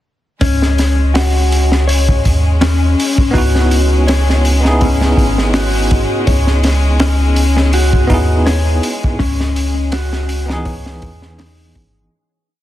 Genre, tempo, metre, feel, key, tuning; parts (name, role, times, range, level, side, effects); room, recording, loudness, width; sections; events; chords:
trip hop; 82 BPM; 4/4; swing 55% on 16ths; C# minor; A4 = 440 Hz
rich studio violin section; sustained chords; 0.4-12.1 s; G#3 to C#4; -23 LUFS; left 1 dB; vintage 12-bit sampler grit
mellow electric guitar; arpeggios; 0.4-11.7 s; C#4 to C#5; -19 LUFS; left 3 dB; vintage 12-bit sampler grit, tape echo
soft dub sub bass; bass; 0.4-12.1 s; G#1 to E2; -14 LUFS; equal
crunchy breakbeat drum kit; drums; 0.4-11.9 s; hi-hat, kick drum, snare drum; -17 LUFS; equal
bell-like tine electric piano; accompaniment; 3.3-12.1 s; E3 to G#4; -20 LUFS; right 1 dB; tremolo, tape echo
small room ambience; dense, heavily limited modern master; -11 LUFS; side -13 dB against mid
0.4-12.1 groove
fade-out 8.2-12.1
0.4 C#m7